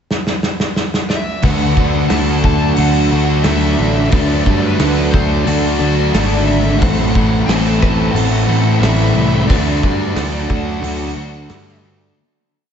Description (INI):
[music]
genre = rock, shoegaze and dream pop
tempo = 89 BPM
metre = 4/4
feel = straight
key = D mixolydian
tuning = A4 = 439 Hz
[part]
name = loose indie drum kit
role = drums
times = 0.1-11.7 s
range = hi-hat, kick drum, snare drum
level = -19 LUFS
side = equal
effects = none
[part]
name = smooth overdriven lead guitar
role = melody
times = 1.1-11.8 s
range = B4 to A5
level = -24 LUFS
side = left 1 dB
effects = analog delay
[part]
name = warbly tape-like pad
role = sustained chords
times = 2.4-12.1 s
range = E3 to A4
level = -25 LUFS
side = left 1 dB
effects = none
[part]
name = twelve-string electric guitar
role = arpeggios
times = 1.4-12.2 s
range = F#4 to C5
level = -27 LUFS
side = left 6 dB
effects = wide subtle chorus, analog delay
[part]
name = overdriven semi-hollow guitar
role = riff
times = 1.4-12.2 s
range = A2 to F#4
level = -19 LUFS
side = right 7 dB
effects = reverse reverb
[part]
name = thick fuzz guitar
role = riff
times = 1.4-12.2 s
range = A2 to D4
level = -19 LUFS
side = left 6 dB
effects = distortion, ensemble chorus
[part]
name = fuzz picked electric bass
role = bass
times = 1.4-12.1 s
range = G#1 to G2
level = -18 LUFS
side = equal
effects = overdrive
[sound]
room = wet lush hall reverb, RT60 2.2 s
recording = dreamy mix soaked in reverb, nothing above 7.9 kHz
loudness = -12 LUFS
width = side -8 dB against mid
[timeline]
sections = 0.0-1.4 pickup bar; 1.4-12.2 A section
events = drum fill 0.1-1.4; fade-out 9.5-12.2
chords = 0.0 N.C.; 1.4 D; 6.8 Am; 9.5 D